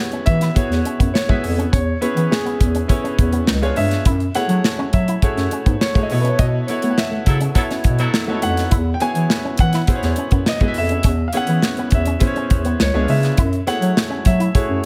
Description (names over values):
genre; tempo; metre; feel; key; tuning
polished 1980s jazz-funk pop; 103 BPM; 4/4; straight; E major; A4 = 438 Hz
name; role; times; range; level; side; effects
warm baby grand piano; melody; 0.0-14.8 s; G#4 to G#5; -28 LUFS; equal; digital delay
clear baby grand piano; accompaniment; 0.0-14.9 s; A3 to E5; -26 LUFS; equal; lush chorus
electric guitar with an envelope filter; riff; 0.1-14.6 s; G#3 to E4; -31 LUFS; equal; lush chorus
modern studio drum kit; drums; 0.1-14.7 s; hi-hat, kick drum, snare drum; -21 LUFS; equal; gated reverb
dark bass clarinet; bass; 0.3-14.8 s; C#2 to B3; -22 LUFS; equal; none
warm horn section; second line; 7.3-8.4 s; F#3 to A4; -28 LUFS; equal; none
room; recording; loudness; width
studio reverb; none; -18 LUFS; mono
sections
0.0-14.9 A section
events
band accent 6.4-8.7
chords
0.0 E69; 1.7 C#m7/E; 3.5 C#7b9; 4.1 F#m9; 6.1 B9sus4; 8.7 E69; 11.1 C#m7/E; 12.8 C#7b9; 13.4 F#m9